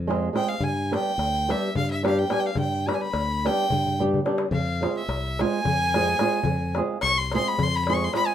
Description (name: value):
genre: balkan folk, Balkan wedding band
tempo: 215 BPM (eighths)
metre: 7/8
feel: straight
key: F hungarian minor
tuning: A4 = 439 Hz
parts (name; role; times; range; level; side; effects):
- modern bright fingered electric bass; bass; 0.0-8.1 s; C2 to G2; -28 LUFS; left 1 dB; none
- flamenco guitar; accompaniment; 0.1-8.3 s; G3 to Ab4; -26 LUFS; right 2 dB; none
- darbuka; percussion; 0.1-8.3 s; none; -30 LUFS; left 3 dB; none
- clear fiddle; melody; 0.4-8.3 s; E5 to Db6; -26 LUFS; equal; none
room: moderate small room reverb, RT60 0.5 s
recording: minimal, uncompressed stereo recording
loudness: -22 LUFS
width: side -10 dB against mid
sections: 0.0-8.3 A section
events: fiddle solo 0.0-8.3; drum fill 3.8-4.5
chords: 0.0 Fm; 0.6 G; 4.5 Fm